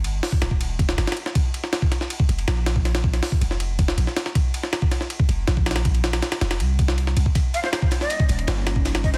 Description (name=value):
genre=drum and bass, jungle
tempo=160 BPM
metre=4/4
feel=straight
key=unclear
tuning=A4 = 442 Hz
part: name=warm 808-style bass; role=bass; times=0.0-9.2 s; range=Eb1 to C2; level=-25 LUFS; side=equal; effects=none
part: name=jungle sampler-style drum kit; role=drums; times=0.0-9.2 s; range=hi-hat, kick drum, ride cymbal, snare drum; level=-24 LUFS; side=equal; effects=none
part: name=ethereal airy pad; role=sustained chords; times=8.0-9.2 s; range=G3 to Eb4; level=-36 LUFS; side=equal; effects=ensemble chorus, built-in reverb
part: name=crunchy breakbeat drum kit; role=drums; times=7.3-9.1 s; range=hi-hat, snare drum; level=-40 LUFS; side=equal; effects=none
part: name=breathy jazz flute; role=melody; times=7.5-9.2 s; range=C5 to F5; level=-30 LUFS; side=equal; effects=dub echo
room=small room reverb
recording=dense, heavily limited modern master, vinyl crackle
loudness=-22 LUFS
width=mono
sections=0.0-9.2 A section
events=none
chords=0.0 Eb; 1.4 F5; 7.4 Eb7